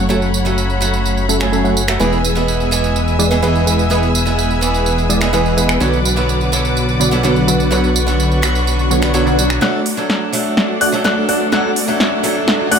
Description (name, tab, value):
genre	EDM, festival progressive house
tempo	126 BPM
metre	4/4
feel	straight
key	unclear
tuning	A4 = 439 Hz
part	picked acoustic archtop guitar	accompaniment	0.0-12.7 s	C#3 to A4	-20 LUFS	right 3 dB	dub echo
part	rich symphonic string section	sustained chords	0.0-12.8 s	A3 to E6	-23 LUFS	left 2 dB	none
part	supersaw stab	riff	0.0-12.8 s	D3 to F#5	-18 LUFS	equal	cassette tape, low-pass filter, dub echo
part	fat analog bass	bass	0.0-9.6 s	E1 to B1	-18 LUFS	left 1 dB	none
part	big-room dance drum kit	drums	0.1-12.8 s	finger snaps, hi-hat, snare drum, tambourine	-20 LUFS	right 2 dB	overdrive
part	swell and riser	sound effects	8.8-12.8 s	none	-25 LUFS	left 2 dB	none
part	bright baby grand piano	arpeggios	9.6-12.8 s	F#6	-22 LUFS	left 5 dB	low-pass filter, dub echo
room	light reverb, digital ambience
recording	none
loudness	-13 LUFS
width	side -7 dB against mid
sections	0.0-9.6 A section; 9.6-12.8 B section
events	swell 8.8-9.6; build-up 9.6-12.8; drum fill 9.6-12.8; filter sweep on supersaw synth 9.6-12.8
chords	0.0 F#m; 2.0 E; 5.8 Bm; 9.6 D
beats	| 0.10 0.57 1.05 1.52 | 2.00 2.48 2.95 3.43 | 3.91 4.38 4.86 5.33 | 5.81 6.29 6.76 7.24 | 7.71 8.19 8.67 9.14 | 9.62 10.10 10.57 11.05 | 11.53 12.00 12.48